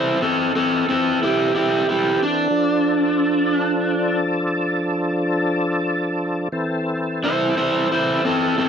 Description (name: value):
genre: blues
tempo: 60 BPM (dotted quarters)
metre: 12/8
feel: straight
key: A minor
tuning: A4 = 440 Hz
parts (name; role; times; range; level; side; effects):
- overdriven slide guitar; melody; 0.0-8.7 s; C4 to C5; -18 LUFS; right 1 dB; none
- overdriven tonewheel organ; sustained chords; 0.0-8.7 s; E3 to A4; -22 LUFS; left 1 dB; slow rotary speaker, chorus vibrato
room: light reverb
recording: dry, close 1970s-style studio recording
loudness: -18 LUFS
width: side -7 dB against mid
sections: 0.0-8.7 A section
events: electric slide guitar solo 0.0-8.7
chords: 0.0 Am; 2.5 Dm; 6.5 Am